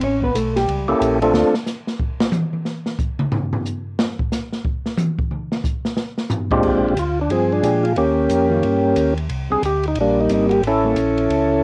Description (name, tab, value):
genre	soul jazz organ trio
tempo	181 BPM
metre	4/4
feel	swing 63% on 8ths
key	unclear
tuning	A4 = 440 Hz
part	hollow-body jazz guitar	accompaniment	0.0-0.9, 6.6-11.0 s	Eb3 to C#5	-25 LUFS	equal	cassette tape
part	mellow tonewheel organ	bass	0.0-1.4, 6.6-11.6 s	Ab1 to Bb2	-26 LUFS	equal	chorus vibrato, slow rotary speaker, tube saturation
part	open jazz drum kit	drums	0.0-11.4 s	crash cymbal, hi-hat, kick drum, ride cymbal, snare drum, toms	-26 LUFS	equal	cassette tape
part	percussive tonewheel organ	melody	0.9-1.6, 6.5-11.6 s	Bb2 to A4	-19 LUFS	equal	slow rotary speaker, overdrive, cassette tape
room	light reverb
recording	home recording on cassette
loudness	-20 LUFS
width	mono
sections	0.0-6.6 A section; 6.6-11.6 B section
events	hollow-body jazz guitar solo 0.0-6.6; drum solo 1.3-6.6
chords	0.0 A7b9; 1.3 D5; 2.7 N.C.; 6.6 Bb13; 8.0 Eb9; 9.3 Abmaj9#11; 10.6 A(b9)